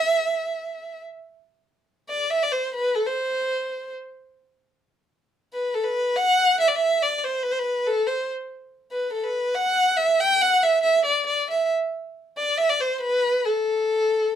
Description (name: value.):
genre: klezmer.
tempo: 140 BPM.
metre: 4/4.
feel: straight.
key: A dorian.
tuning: A4 = 440 Hz.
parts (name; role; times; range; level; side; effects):
rich violin; solo; 0.0-14.4 s; A4 to G5; -20 LUFS; equal; none.
room: moderate studio reverb, RT60 0.6 s.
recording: none.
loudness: -20 LUFS.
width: side -9 dB against mid.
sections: 0.0-1.4 A section; 1.4-14.4 B section.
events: none.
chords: none.